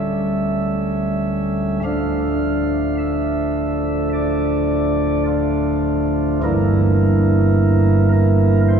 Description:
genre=classical, chorale-style piece for pipe organ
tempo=52 BPM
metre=4/4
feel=rubato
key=D minor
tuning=A4 = 440 Hz
part: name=pipe organ, flutes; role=solo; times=0.0-8.8 s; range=D1 to F5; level=-16 LUFS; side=right 1 dB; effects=none
room=wet cathedral reverb, RT60 6.3 s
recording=recorded in a church or concert hall, studio ambience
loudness=-16 LUFS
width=side -7 dB against mid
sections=0.0-8.8 A section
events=none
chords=0.0 A7/D; 1.8 Dm; 6.4 Edim/G

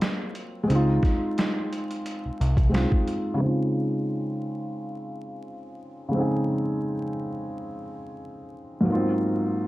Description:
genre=lo-fi hip hop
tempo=88 BPM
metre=4/4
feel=swing 55% on 16ths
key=Db major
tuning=A4 = 440 Hz
part: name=felt-muted upright piano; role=accompaniment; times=0.0-9.7 s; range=Ab2 to Ab4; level=-26 LUFS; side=equal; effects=low-pass filter
part: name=boom bap sampler-style drum kit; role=drums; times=0.0-3.2 s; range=hi-hat, kick drum, snare drum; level=-25 LUFS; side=equal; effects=overdrive
part: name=fat analog bass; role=bass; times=0.7-2.9 s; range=C2 to Db2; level=-23 LUFS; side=equal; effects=none
room=moderate small room reverb, RT60 0.5 s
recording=dark, warm production, vinyl crackle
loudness=-23 LUFS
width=side -17 dB against mid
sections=0.0-3.4 A section; 3.4-9.7 B section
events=filter sweep on felt piano 3.4-9.7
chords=0.0 Ab13 (rootless); 0.7 Dbmaj9; 8.9 Ab13

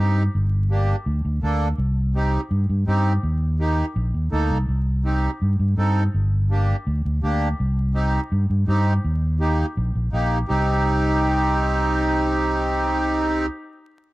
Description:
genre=latin, cumbia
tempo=165 BPM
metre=4/4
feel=straight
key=C dorian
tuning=A4 = 442 Hz
part: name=accordion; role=accompaniment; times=0.0-13.5 s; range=Bb3 to A4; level=-23 LUFS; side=right 1 dB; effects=none
part: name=fingered electric bass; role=bass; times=0.0-13.5 s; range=G1 to G2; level=-20 LUFS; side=equal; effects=none
room=light reverb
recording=dark, warm production, vinyl crackle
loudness=-19 LUFS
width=side -18 dB against mid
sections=0.0-10.5 A section; 10.5-13.4 B section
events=none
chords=0.3 Gm; 1.8 Cm; 3.2 Eb; 4.7 Cm; 6.1 Gm; 7.6 Cm; 9.0 Eb; 10.5 Cm

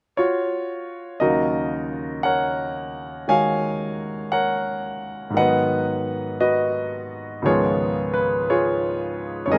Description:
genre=solo jazz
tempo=58 BPM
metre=4/4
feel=swing 66% on 8ths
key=Eb minor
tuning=A4 = 440 Hz
part: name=clear concert grand piano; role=solo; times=0.2-9.6 s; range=Db2 to Ab5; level=-23 LUFS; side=equal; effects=none
room=little or no reverb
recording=recorded outdoors, with no room sound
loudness=-23 LUFS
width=mono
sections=0.0-1.2 A section; 1.2-9.6 B section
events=none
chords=0.0 Dbadd11/F; 1.2 Ebm9; 5.4 Abm7; 7.4 Db9

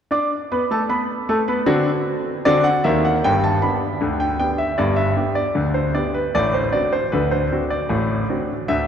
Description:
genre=ragtime piano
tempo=77 BPM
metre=2/4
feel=straight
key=G major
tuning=A4 = 440 Hz
part: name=clear concert grand piano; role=solo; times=0.1-8.9 s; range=G1 to D6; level=-17 LUFS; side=equal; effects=none
room=wet cathedral reverb, RT60 4.5 s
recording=recorded in a church or concert hall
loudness=-17 LUFS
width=side -8 dB against mid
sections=0.1-3.2 A section; 3.2-8.9 B section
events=none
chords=0.1 Asus24; 1.7 D7; 3.2 G; 6.3 D7/A

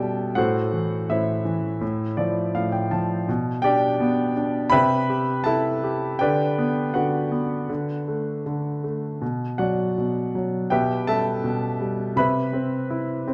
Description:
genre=classical, lyrical solo piano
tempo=82 BPM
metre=4/4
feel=rubato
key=G major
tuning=A4 = 439 Hz
part: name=warm concert grand piano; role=solo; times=0.0-13.3 s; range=A2 to B5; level=-24 LUFS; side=equal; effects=none
room=moderate concert hall reverb, RT60 2.4 s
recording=dark, warm production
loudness=-24 LUFS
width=mono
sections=0.0-13.3 A section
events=grand piano fill 1.8-3.3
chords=0.4 Am; 1.8 Fmaj13/A; 3.3 G/B; 4.7 C; 6.2 G/D; 7.7 D; 9.2 Bm; 10.7 Em/B; 12.2 Cmaj7

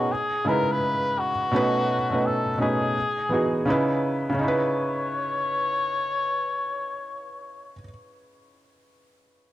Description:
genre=hip hop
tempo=84 BPM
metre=4/4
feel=swing 65% on 16ths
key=C# minor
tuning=A4 = 440 Hz
part: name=trumpet with cup mute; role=melody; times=0.0-7.8 s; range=F#4 to C#5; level=-26 LUFS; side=left 2 dB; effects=cassette tape, plate reverb
part: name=felt-muted upright piano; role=accompaniment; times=0.0-9.5 s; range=B2 to B4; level=-24 LUFS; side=right 1 dB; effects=cassette tape, plate reverb
room=moderate studio reverb, RT60 0.5 s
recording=home recording on cassette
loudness=-22 LUFS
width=side -14 dB against mid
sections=0.0-4.4 A section; 4.4-7.2 B section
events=none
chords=0.1 C#m7; 1.5 B7; 3.0 Emaj9; 3.7 C#m7

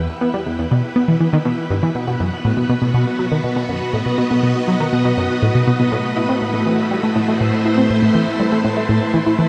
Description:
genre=ambient, sequencer-driven space music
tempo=121 BPM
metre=4/4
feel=straight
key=unclear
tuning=A4 = 440 Hz
part: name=string machine, full ensemble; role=sustained chords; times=0.0-9.5 s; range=A3 to G5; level=-22 LUFS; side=equal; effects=ensemble chorus
part: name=tight sequenced synth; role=riff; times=0.0-9.5 s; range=E2 to E4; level=-19 LUFS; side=equal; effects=chorus, phaser, delay
room=wet shimmer reverb, RT60 7.8 s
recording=none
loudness=-17 LUFS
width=mono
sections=0.0-9.5 A section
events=fade-in on string machine 0.0-9.5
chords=0.0 Em; 1.9 B; 5.9 Am

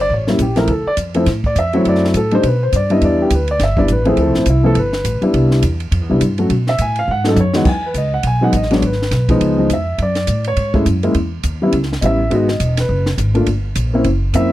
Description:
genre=jazz piano trio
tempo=206 BPM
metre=4/4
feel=swing 59% on 8ths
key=E major from 7.7 s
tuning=A4 = 440 Hz
part: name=dark baby grand piano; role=melody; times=0.0-14.5 s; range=E2 to Ab5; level=-15 LUFS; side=left 1 dB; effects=none
part: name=upright bass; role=bass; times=0.0-14.5 s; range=E1 to B2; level=-17 LUFS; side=equal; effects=none
part: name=compact cocktail drum kit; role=drums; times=0.1-14.4 s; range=crash cymbal, hi-hat, kick drum, ride cymbal, snare drum, toms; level=-22 LUFS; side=equal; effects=none
room=studio ambience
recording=dry, close 1970s-style studio recording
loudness=-13 LUFS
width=side -15 dB against mid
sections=0.0-7.7 A section; 7.7-14.5 A section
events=grand piano solo 0.0-14.5; drum fill 7.1-7.7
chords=0.1 A7b9; 0.7 Dmadd9; 1.9 F#m7b5; 2.4 G; 3.0 Em7; 4.2 Dm9; 4.8 Gadd9; 5.3 Cmaj9; 6.5 B7(no3); 7.7 Emaj7; 8.8 G#m; 9.4 C#7; 10.0 F#madd9; 11.1 D#5; 11.7 A9; 12.3 G#m7; 13.5 Gm

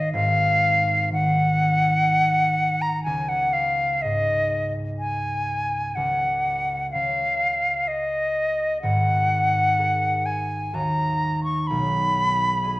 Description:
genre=classical, impressionist duo for flute and harp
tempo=63 BPM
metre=3/4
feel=rubato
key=G# dorian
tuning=A4 = 440 Hz
part: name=silver concert flute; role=melody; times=0.0-12.8 s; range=D#5 to C#6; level=-21 LUFS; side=equal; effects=none
part: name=concert harp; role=accompaniment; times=0.0-12.8 s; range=G#1 to D#5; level=-26 LUFS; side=equal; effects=none
room=wet recital hall reverb, RT60 1.5 s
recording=worn, warbling old tape, cassette tape, warbly pitch drift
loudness=-20 LUFS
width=side -19 dB against mid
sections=0.0-12.8 A section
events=none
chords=0.0 G#5; 3.0 C#5; 6.0 N.C.; 8.8 G#sus2; 10.7 D#m; 11.7 B6

